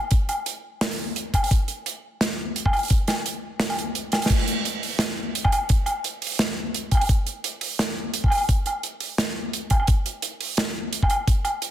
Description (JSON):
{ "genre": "drum and bass", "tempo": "172 BPM", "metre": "4/4", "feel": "swing 57% on 16ths, half-time", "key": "none", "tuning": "none", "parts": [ { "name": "big rock drum kit", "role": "drums", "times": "0.1-11.7 s", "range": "crash cymbal, hi-hat, snare drum, woodblock", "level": "-24 LUFS", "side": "right 1 dB", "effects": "none" }, { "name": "electronic kick drum", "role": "drums", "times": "0.1-11.4 s", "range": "none", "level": "-20 LUFS", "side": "equal", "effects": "none" } ], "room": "light reverb", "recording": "dense, heavily limited modern master", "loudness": "-22 LUFS", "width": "side -11 dB against mid", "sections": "0.0-4.3 A section; 4.3-11.7 A section", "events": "drop 0.0-4.3, 4.3-11.7; kick drops out 4.0-4.3; drum fill 4.1; band accent 4.3", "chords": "none" }